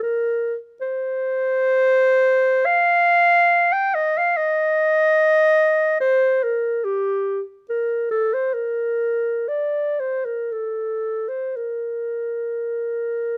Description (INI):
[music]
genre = classical, free, expressive piece for unaccompanied clarinet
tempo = 53-77 BPM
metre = 4/4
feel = rubato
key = Bb major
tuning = A4 = 440 Hz
[part]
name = dark clarinet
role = solo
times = 0.0-13.4 s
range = G4 to G5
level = -20 LUFS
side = equal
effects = none
[sound]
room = light reverb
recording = close, detailed microphones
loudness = -20 LUFS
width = mono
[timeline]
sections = 0.0-13.4 A section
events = none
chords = none